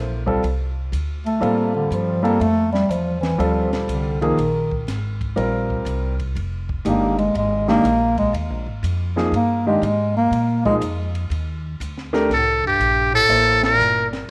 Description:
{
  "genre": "modal jazz",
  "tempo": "121 BPM",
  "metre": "4/4",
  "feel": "swing 67% on 8ths",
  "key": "unclear",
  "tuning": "A4 = 440 Hz",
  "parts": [
    { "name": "warm grand piano", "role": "accompaniment", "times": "0.0-14.1 s", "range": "Eb3 to C5", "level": "-25 LUFS", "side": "equal", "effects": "none" },
    { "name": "upright bass", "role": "bass", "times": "0.0-14.3 s", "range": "F1 to Bb2", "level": "-27 LUFS", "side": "equal", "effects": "none" },
    { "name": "compact cocktail drum kit", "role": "drums", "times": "0.3-14.2 s", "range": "hi-hat, kick drum, ride cymbal, snare drum", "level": "-36 LUFS", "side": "equal", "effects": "none" },
    { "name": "mellow bass clarinet", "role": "second line", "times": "1.3-14.3 s", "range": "G2 to Bb3", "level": "-23 LUFS", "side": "equal", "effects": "none" },
    { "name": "trumpet with metal mute", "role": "melody", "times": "12.3-14.1 s", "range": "G4 to Bb4", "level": "-18 LUFS", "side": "equal", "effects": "none" }
  ],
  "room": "moderate plate reverb, RT60 1.7 s, small room ambience",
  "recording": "none",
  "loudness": "-20 LUFS",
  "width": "mono",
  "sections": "0.0-12.3 A section; 12.3-14.3 B section",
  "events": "bass clarinet solo 0.0-12.3; band accent 13.5",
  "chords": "0.0 C9sus4; 4.4 Bb9sus4; 12.3 C7(no3)"
}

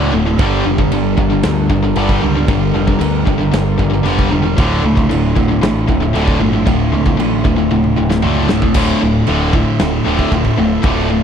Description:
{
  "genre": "heavy metal",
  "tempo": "115 BPM",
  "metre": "4/4",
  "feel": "straight",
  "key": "D minor",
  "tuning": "A4 = 440 Hz",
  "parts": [
    { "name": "warm studio string section", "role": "sustained chords", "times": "0.0-11.2 s", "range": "D3 to Bb4", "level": "-27 LUFS", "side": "right 1 dB", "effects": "none" },
    { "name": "crunchy overdriven guitar", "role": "riff", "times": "0.0-11.2 s", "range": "D2 to G3", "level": "-18 LUFS", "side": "equal", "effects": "none" },
    { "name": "tight distorted guitar", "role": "riff", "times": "0.0-11.2 s", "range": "D2 to G3", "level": "-18 LUFS", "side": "left 9 dB", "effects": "distortion" },
    { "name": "tight distorted guitar", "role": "riff", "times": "0.0-11.2 s", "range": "D2 to G3", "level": "-19 LUFS", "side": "right 9 dB", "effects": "distortion" },
    { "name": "growling picked electric bass", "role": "bass", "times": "0.0-11.2 s", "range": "D1 to D2", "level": "-19 LUFS", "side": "equal", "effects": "overdrive" },
    { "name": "big rock drum kit", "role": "drums", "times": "0.4-11.0 s", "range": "china cymbal, crash cymbal, kick drum, snare drum, toms", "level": "-19 LUFS", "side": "equal", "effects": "none" }
  ],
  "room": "small room ambience",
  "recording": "dry, close 1970s-style studio recording",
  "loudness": "-12 LUFS",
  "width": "side -8 dB against mid",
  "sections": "0.0-8.8 A section; 8.8-11.2 B section",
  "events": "drum fill 7.7-8.8",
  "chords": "0.4 Gm; 4.6 Dm"
}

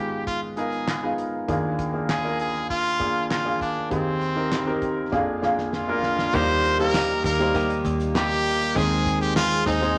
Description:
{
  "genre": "piano-driven pop",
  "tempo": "99 BPM",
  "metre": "4/4",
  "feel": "straight",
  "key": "Eb major",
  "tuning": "A4 = 439 Hz",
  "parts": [
    { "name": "brilliant trumpet", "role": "melody", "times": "0.0-10.0 s", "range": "C4 to C5", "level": "-27 LUFS", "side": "equal", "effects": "none" },
    { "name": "warm concert grand piano", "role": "accompaniment", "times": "0.0-10.0 s", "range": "Bb1 to C5", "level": "-28 LUFS", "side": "equal", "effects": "none" },
    { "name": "damped 70s drum kit", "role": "drums", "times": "0.3-10.0 s", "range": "crash cymbal, handclaps, hi-hat, kick drum, snare drum", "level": "-33 LUFS", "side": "equal", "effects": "none" },
    { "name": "direct-recorded clean electric guitar", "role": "riff", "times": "6.3-10.0 s", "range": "Eb3 to Ab4", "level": "-30 LUFS", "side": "equal", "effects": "none" },
    { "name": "vintage muted picked electric bass", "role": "bass", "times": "6.3-10.0 s", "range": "Eb2", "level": "-31 LUFS", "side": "equal", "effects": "none" },
    { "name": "tube shaker", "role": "percussion", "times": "6.3-10.0 s", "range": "none", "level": "-55 LUFS", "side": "equal", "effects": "none" }
  ],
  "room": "wet studio reverb, RT60 1.0 s",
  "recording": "none",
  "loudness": "-24 LUFS",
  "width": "mono",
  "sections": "0.0-6.3 A section; 6.3-10.0 B section",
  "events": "drum fill 5.1-6.3",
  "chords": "0.0 Abm6; 1.5 Bb7/Eb; 3.9 Abmaj7/Eb; 5.1 Bb7; 6.3 Eb; 8.8 Ab/Eb"
}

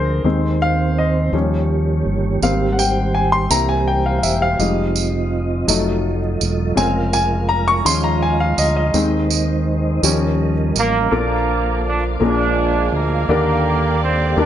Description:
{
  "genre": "slow gospel",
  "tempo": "55 BPM (dotted quarters)",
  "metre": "6/8",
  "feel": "straight",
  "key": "Ab major, Bb major from 11.1 s",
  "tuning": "A4 = 440 Hz",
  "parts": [
    { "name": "clear grand piano", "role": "accompaniment", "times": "0.0-14.5 s", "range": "Bb2 to Db6", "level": "-20 LUFS", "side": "left 3 dB", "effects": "none" },
    { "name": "percussive tonewheel organ", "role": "sustained chords", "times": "0.0-14.5 s", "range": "Eb3 to D6", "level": "-24 LUFS", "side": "right 3 dB", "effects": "slow rotary speaker, chorus vibrato" },
    { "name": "fingered electric bass", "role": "bass", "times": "0.0-14.5 s", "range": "E1 to Eb2", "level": "-20 LUFS", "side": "equal", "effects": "none" },
    { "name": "tambourine", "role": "percussion", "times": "2.4-11.1 s", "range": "none", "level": "-22 LUFS", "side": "right 10 dB", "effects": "none" },
    { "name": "mellow horn section", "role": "melody", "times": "10.8-14.5 s", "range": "D3 to D4", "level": "-19 LUFS", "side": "right 3 dB", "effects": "none" },
    { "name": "warm symphonic string section", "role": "sustained chords", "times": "11.1-14.5 s", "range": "Bb3 to F5", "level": "-30 LUFS", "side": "right 1 dB", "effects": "none" }
  ],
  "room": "light reverb, small room ambience",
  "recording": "nothing above 11.0 kHz",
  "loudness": "-15 LUFS",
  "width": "side -10 dB against mid",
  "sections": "0.0-11.1 A section; 11.1-14.5 B section",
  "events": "grand piano solo 0.0-11.1",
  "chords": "0.2 Ab/Eb; 1.3 Eb7; 2.4 Abmaj7; 3.5 C7; 4.6 Fm7; 5.7 F7b9; 6.8 Bbm7/F; 7.9 Eb9sus4; 8.9 Ab/Eb; 10.0 Eb7; 11.1 Bbmaj7; 12.2 Bb7; 13.3 Ebmaj7"
}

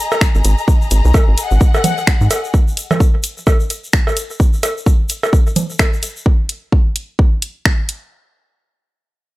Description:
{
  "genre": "minimal techno",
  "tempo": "129 BPM",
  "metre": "4/4",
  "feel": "swing 59% on 16ths",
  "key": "unclear",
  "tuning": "A4 = 441 Hz",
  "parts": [
    { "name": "clear symphonic string section", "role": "texture", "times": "0.0-2.6 s", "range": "G#4 to A#5", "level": "-22 LUFS", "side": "left 5 dB", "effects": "sidechain pumping" },
    { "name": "cowbell, bongos and congas", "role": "percussion", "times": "0.1-5.9 s", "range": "none", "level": "-19 LUFS", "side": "right 2 dB", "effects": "overdrive, studio reverb, tape echo" },
    { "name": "tube shaker", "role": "percussion", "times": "0.1-6.2 s", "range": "none", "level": "-28 LUFS", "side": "left 2 dB", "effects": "none" },
    { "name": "electronic kick drum", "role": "drums", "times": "0.2-7.8 s", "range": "none", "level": "-13 LUFS", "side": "equal", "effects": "studio reverb" },
    { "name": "house drum kit", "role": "drums", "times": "0.2-8.0 s", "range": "finger snaps, hi-hat", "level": "-19 LUFS", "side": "equal", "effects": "studio reverb" },
    { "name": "rubbery square bass", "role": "bass", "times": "0.3-2.3 s", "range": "G#1 to G#2", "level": "-12 LUFS", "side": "equal", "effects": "sidechain pumping" }
  ],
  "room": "digital ambience",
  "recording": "dry, gritty hardware recording",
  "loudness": "-13 LUFS",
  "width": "side -18 dB against mid",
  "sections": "0.0-8.1 A section",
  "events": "drop 0.0-8.1",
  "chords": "0.0 G#5"
}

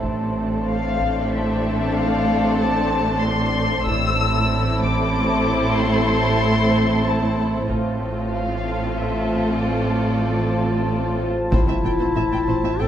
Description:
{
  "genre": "cinematic, suspense film score",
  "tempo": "94 BPM",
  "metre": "3/4",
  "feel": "straight",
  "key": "A minor",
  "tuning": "A4 = 440 Hz",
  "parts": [
    { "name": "muted chamber violin section", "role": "second line", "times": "0.0-12.9 s", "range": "D4 to G5", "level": "-27 LUFS", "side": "left 1 dB", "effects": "none" },
    { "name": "muted chamber viola section", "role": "accompaniment", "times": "0.0-12.9 s", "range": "A3 to C4", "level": "-25 LUFS", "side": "right 1 dB", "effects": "none" },
    { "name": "deep dark ambient pad", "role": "sustained chords", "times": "0.0-12.9 s", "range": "F4 to A5", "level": "-27 LUFS", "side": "equal", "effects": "chorus, built-in reverb" },
    { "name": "muted chamber double bass section", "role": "bass", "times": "0.0-12.9 s", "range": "A1", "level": "-27 LUFS", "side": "right 2 dB", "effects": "none" },
    { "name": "muted studio cello section", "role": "bass", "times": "0.0-12.9 s", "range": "A2", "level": "-26 LUFS", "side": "right 2 dB", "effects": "none" },
    { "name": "deep rumbling drone", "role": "drone", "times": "0.0-12.9 s", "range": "A1", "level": "-29 LUFS", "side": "equal", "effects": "built-in reverb" },
    { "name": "taiko ensemble", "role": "drums", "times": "0.0-12.1 s", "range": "none", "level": "-26 LUFS", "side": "equal", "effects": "none" },
    { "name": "muted chamber violin section", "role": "melody", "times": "0.7-12.9 s", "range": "D5 to E6", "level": "-26 LUFS", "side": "left 5 dB", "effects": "none" },
    { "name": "clear clarinet", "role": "second line", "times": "11.2-12.9 s", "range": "E4 to A4", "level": "-23 LUFS", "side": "left 4 dB", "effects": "none" },
    { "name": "impact", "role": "sound effects", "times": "11.5-12.9 s", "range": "none", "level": "-27 LUFS", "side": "equal", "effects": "none" }
  ],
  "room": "moderate scoring stage reverb, RT60 1.7 s",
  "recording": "none",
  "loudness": "-18 LUFS",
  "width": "side -10 dB against mid",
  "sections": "0.0-11.5 A section; 11.5-12.9 B section",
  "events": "impact 11.5-12.9",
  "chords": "0.0 Dm7/A; 3.9 Am; 7.7 Dm7/A; 11.5 Am7"
}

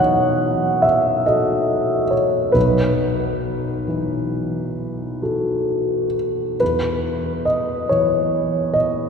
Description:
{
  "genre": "classical, impressionist solo piano",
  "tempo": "43-48 BPM (dotted quarters)",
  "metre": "9/8",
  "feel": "rubato",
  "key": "unclear",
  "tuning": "A4 = 440 Hz",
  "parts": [
    { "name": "clear grand piano", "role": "solo", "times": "0.0-9.1 s", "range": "B1 to F#5", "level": "-17 LUFS", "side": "equal", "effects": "none" }
  ],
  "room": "wet cathedral reverb, RT60 4.5 s",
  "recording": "heard from further back in the room",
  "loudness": "-17 LUFS",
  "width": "side -6 dB against mid",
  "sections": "0.0-9.1 A section",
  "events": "none",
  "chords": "0.0 B7sus4; 6.6 E5"
}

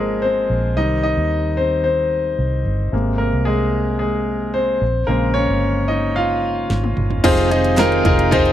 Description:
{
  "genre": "piano-driven pop",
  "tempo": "111 BPM",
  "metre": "4/4",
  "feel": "straight",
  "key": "F minor",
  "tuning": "A4 = 441 Hz",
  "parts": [
    { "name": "clear grand piano", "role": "accompaniment", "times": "0.0-8.5 s", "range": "C3 to F5", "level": "-18 LUFS", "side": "left 1 dB", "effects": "none" },
    { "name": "vintage muted fingered electric bass", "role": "bass", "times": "0.0-8.5 s", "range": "F1 to Eb2", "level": "-21 LUFS", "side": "right 1 dB", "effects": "none" },
    { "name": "pop drum kit", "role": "drums", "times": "6.7-8.5 s", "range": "crash cymbal, handclaps, hi-hat, kick drum, snare drum, toms", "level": "-20 LUFS", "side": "right 1 dB", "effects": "none" },
    { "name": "picked steel-string acoustic guitar", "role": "riff", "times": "7.2-8.5 s", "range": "F2 to F4", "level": "-24 LUFS", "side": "right 12 dB", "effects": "none" }
  ],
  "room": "light reverb",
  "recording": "dry, close 1970s-style studio recording",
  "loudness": "-16 LUFS",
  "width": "side -11 dB against mid",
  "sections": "0.0-7.2 A section; 7.2-8.5 B section",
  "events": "grand piano solo 0.0-7.2; drum fill 6.7-7.2",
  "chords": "0.0 Fm; 0.8 Cm; 2.9 Abadd9; 4.8 Bbm7; 7.2 Fm7"
}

